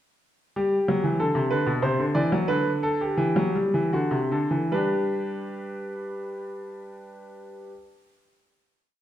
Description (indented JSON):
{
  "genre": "classical, baroque-style two-part invention for grand piano",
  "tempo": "72-96 BPM",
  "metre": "3/4",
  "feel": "straight",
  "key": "G major",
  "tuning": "A4 = 442 Hz",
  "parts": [
    { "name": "bright grand piano", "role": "solo", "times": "0.6-7.7 s", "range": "B2 to D5", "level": "-23 LUFS", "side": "equal", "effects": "none" }
  ],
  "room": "wet recital hall reverb, RT60 1.5 s",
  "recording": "dark, warm production",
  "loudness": "-22 LUFS",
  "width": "side -12 dB against mid",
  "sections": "0.6-4.7 exposition; 4.7-9.0 final chord",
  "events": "slowing down 0.6-6.0",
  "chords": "0.6 G; 1.8 Cadd9; 2.5 G/D; 3.9 D7; 4.7 G"
}